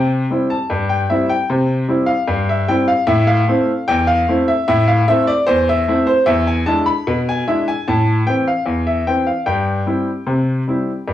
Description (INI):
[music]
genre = ragtime piano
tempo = 75 BPM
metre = 2/4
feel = straight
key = C major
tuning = A4 = 440 Hz
[part]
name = clear baby grand piano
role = solo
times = 0.0-11.1 s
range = E2 to B5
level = -14 LUFS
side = left 1 dB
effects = cassette tape
[sound]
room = wet booth ambience, RT60 0.3 s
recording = home recording on cassette, small room reverb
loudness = -14 LUFS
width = side -12 dB against mid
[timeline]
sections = 0.0-11.1 A section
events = none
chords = 0.0 C; 3.1 Am; 6.3 E7; 7.9 Am; 9.5 C/G